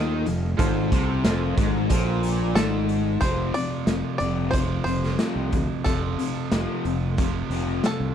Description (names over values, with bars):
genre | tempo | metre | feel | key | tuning
classic rock | 91 BPM | 4/4 | straight | F mixolydian | A4 = 439 Hz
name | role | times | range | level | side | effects
warm grand piano | accompaniment | 0.0-3.1 s | F4 to Eb5 | -33 LUFS | right 5 dB | none
cranked stack guitar | riff | 0.0-8.1 s | F2 to F3 | -30 LUFS | right 13 dB | overdrive
distorted electric guitar | riff | 0.0-8.1 s | F2 to F3 | -28 LUFS | left 12 dB | distortion
growling fingered electric bass | bass | 0.0-8.1 s | F1 to Eb2 | -26 LUFS | equal | overdrive
raw garage drum kit | drums | 0.3-8.0 s | hi-hat, kick drum, snare drum | -27 LUFS | equal | none
bluegrass banjo | melody | 2.6-8.1 s | A4 to D5 | -30 LUFS | equal | tape echo
room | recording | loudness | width
little or no reverb | none | -21 LUFS | side -9 dB against mid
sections
0.0-3.2 A section; 3.2-8.1 B section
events
none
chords
0.0 F; 3.2 F5